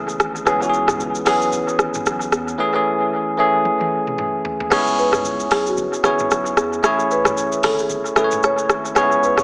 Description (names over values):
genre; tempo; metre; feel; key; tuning
afrobeats; 113 BPM; 4/4; swing 58% on 16ths; C# minor; A4 = 441 Hz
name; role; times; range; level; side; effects
bell-like tine electric piano; accompaniment; 0.0-9.4 s; E3 to C#5; -18 LUFS; equal; dub echo
warm sub bass; bass; 0.0-9.4 s; E1 to E2; -35 LUFS; equal; none
booming analog drum machine; drums; 0.1-9.4 s; crash cymbal, hi-hat, kick drum, rim click, shaker, toms; -21 LUFS; equal; dub echo
marimba with medium mallets; melody; 5.0-9.4 s; F#4 to C#5; -22 LUFS; equal; dub echo
room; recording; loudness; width
wet spring reverb, RT60 2.4 s; echo-heavy mix, small speaker sound; -16 LUFS; side -31 dB against mid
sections
0.0-4.7 A section; 4.7-9.4 B section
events
drum fill 3.7-4.7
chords
0.5 C#m7; 2.6 Amaj7; 4.7 C#m7; 6.8 Amaj7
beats
| 0.47 1.00 1.53 2.06 | 2.59 3.12 3.65 4.18 | 4.71 5.25 5.78 6.31 | 6.84 7.37 7.90 8.43 | 8.96